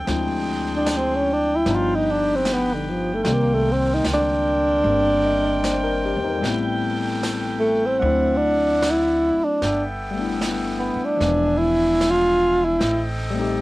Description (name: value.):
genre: jazz ballad.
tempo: 75 BPM.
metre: 4/4.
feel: swing 67% on 8ths.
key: unclear.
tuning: A4 = 442 Hz.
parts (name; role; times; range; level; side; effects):
barky tine electric piano; accompaniment; 0.0-13.6 s; Eb3 to Eb5; -26 LUFS; left 4 dB; overdrive, cassette tape.
bright saxophone section; sustained chords; 0.0-13.6 s; B3 to G#5; -29 LUFS; right 1 dB; cassette tape.
upright bass; bass; 0.0-13.6 s; E1 to E2; -27 LUFS; right 1 dB; none.
jazz brush drum kit; drums; 0.1-13.6 s; brushed snare drum, hi-hat, snare drum; -31 LUFS; right 1 dB; cassette tape.
breathy tenor saxophone; melody; 0.8-13.0 s; D3 to F4; -19 LUFS; right 1 dB; none.
room: light reverb.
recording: home recording on cassette.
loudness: -18 LUFS.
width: side -18 dB against mid.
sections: 0.0-13.6 A section.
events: tenor saxophone solo 0.0-13.6.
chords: 0.1 Dm7b5; 1.7 G7b13; 3.3 Cm7; 6.4 Am9; 8.0 D9; 9.6 G69; 11.2 E7b9; 12.8 Am7b5.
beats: | 0.09 0.88 1.67 2.46 | 3.26 4.05 4.85 5.64 | 6.44 7.23 8.03 8.83 | 9.62 10.42 11.22 12.01 | 12.81 13.61.